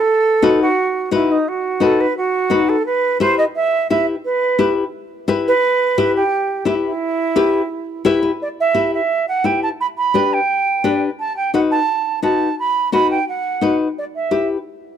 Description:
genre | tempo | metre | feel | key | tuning
latin | 173 BPM | 4/4 | straight | E harmonic minor, E minor from 8.4 s | A4 = 440 Hz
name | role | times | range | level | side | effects
silver concert flute | melody | 0.0-14.5 s | D#4 to B5 | -17 LUFS | right 4 dB | none
nylon-string guitar | accompaniment | 0.4-14.6 s | D4 to E5 | -17 LUFS | left 4 dB | none
room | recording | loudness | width
small room ambience | dry, close 1970s-style studio recording | -15 LUFS | side -9 dB against mid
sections
0.0-8.4 A section; 8.4-15.0 B section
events
nylon-string guitar fill 7.9-8.4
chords
0.1 B7; 2.9 Em; 9.8 G; 11.2 B7; 14.0 Em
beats
| 0.08 0.43 0.77 1.12 | 1.47 1.81 2.16 2.51 | 2.86 3.20 3.55 3.90 | 4.24 4.59 4.94 5.28 | 5.63 5.98 6.33 6.67 | 7.02 7.37 7.71 8.06 | 8.41 8.76 9.10 9.45 | 9.80 10.15 10.49 10.84 | 11.19 11.54 11.89 12.24 | 12.59 12.93 13.28 13.63 | 13.98 14.33

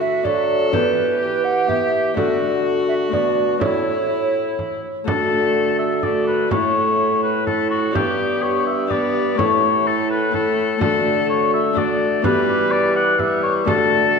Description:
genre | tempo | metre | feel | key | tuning
classical, renaissance-style consort dance | 125 BPM | 3/4 | straight | D major | A4 = 438 Hz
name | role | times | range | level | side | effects
mellow hollow tenor recorder | second line | 0.0-14.2 s | E4 to F#5 | -23 LUFS | right 5 dB | none
Celtic harp | accompaniment | 0.0-14.2 s | G2 to B4 | -25 LUFS | left 6 dB | none
warm viola | accompaniment | 0.0-14.2 s | G3 to A4 | -25 LUFS | left 2 dB | none
dark bassoon | bass | 0.2-14.2 s | G2 to F#3 | -25 LUFS | right 1 dB | none
warm oboe | melody | 0.3-14.2 s | E4 to F#5 | -21 LUFS | left 4 dB | none
frame drum | percussion | 0.3-13.9 s | none | -29 LUFS | right 3 dB | none
room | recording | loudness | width
wet scoring stage reverb, RT60 2.0 s | none | -16 LUFS | side -5 dB against mid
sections
0.0-5.1 A section; 5.1-14.2 A section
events
none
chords
0.0 D; 0.7 Em; 2.2 D; 3.6 A; 5.1 D; 6.5 A; 7.9 G; 9.4 A; 10.8 D; 12.2 Em; 13.7 D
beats
0.25 | 0.73 1.21 1.69 | 2.17 2.65 3.13 | 3.61 4.10 4.59 | 5.07 5.55 6.03 | 6.51 6.99 7.47 | 7.95 8.43 8.90 | 9.38 9.86 10.34 | 10.81 11.29 11.77 | 12.24 12.72 13.20 | 13.67 14.15

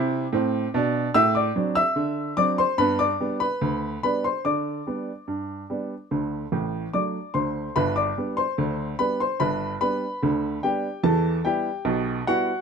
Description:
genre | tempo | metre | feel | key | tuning
ragtime piano | 73 BPM | 2/4 | straight | G major | A4 = 441 Hz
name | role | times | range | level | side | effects
warm upright piano | solo | 0.0-12.6 s | G1 to E6 | -22 LUFS | equal | none
room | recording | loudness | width
light reverb | close, detailed microphones | -22 LUFS | side -6 dB against mid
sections
0.0-7.8 A section; 7.8-12.6 B section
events
none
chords
0.0 D7(no3); 1.1 D7/A; 2.8 G; 4.4 G/D; 6.1 D; 7.8 G; 11.0 Em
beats
0.33 | 1.15 1.97 | 2.79 3.61 | 4.44 5.27 | 6.10 6.93 | 7.75 8.58 | 9.40 10.22 | 11.04 11.86

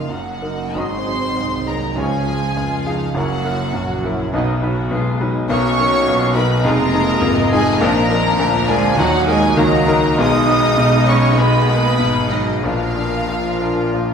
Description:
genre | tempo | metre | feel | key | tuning
classical, romantic movement for piano and orchestra | 101 BPM | 4/4 | uneven beats, rubato | unclear | A4 = 439 Hz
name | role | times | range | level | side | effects
clear grand piano | melody | 0.0-14.1 s | F1 to B4 | -19 LUFS | left 2 dB | none
clear studio violin section | melody | 0.0-14.1 s | Eb5 to Eb6 | -26 LUFS | left 4 dB | none
mellow flute section | second line | 0.0-14.1 s | Eb5 to Eb6 | -24 LUFS | right 3 dB | none
warm studio violin section | second line | 0.0-14.1 s | Eb4 to Eb5 | -26 LUFS | left 2 dB | none
warm studio viola section | accompaniment | 0.0-14.1 s | Eb3 to Gb4 | -25 LUFS | right 1 dB | none
rich studio double bass section | bass | 0.0-14.1 s | F1 to Gb2 | -24 LUFS | right 2 dB | none
warm studio cello section | bass | 0.0-14.1 s | Eb3 to Eb4 | -26 LUFS | right 4 dB | none
mellow clarinet | second line | 0.8-14.1 s | D4 to Gb4 | -28 LUFS | left 2 dB | none
mellow bassoon | accompaniment | 0.8-14.1 s | F3 to Eb4 | -29 LUFS | right 2 dB | none
clear trombone section | sustained chords | 0.8-14.1 s | Bb2 to Ab3 | -28 LUFS | right 5 dB | none
dark French horn section | sustained chords | 0.8-14.1 s | Ab3 to F4 | -29 LUFS | left 3 dB | none
mellow trumpet section | stabs | 0.8-14.1 s | Bb4 to D#5 | -28 LUFS | equal | none
room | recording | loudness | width
wet scoring stage reverb, RT60 1.9 s | minimal, uncompressed stereo recording | -14 LUFS | side -6 dB against mid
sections
0.0-14.1 A section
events
none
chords
0.0 Ebm/Gb; 0.8 Ab7; 2.0 Db; 3.2 Gb7; 4.3 B; 5.5 Bmaj7; 6.7 Fm7b5; 7.8 Bb; 9.0 Ebm; 10.2 Abm/Cb; 12.6 Bb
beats
0.12 | 0.77 1.39 1.98 2.57 | 3.16 3.75 4.34 4.92 | 5.50 6.08 6.66 7.23 | 7.82 8.40 8.99 9.57 | 10.20 10.79 11.39 12.00 | 12.65 13.30 13.94

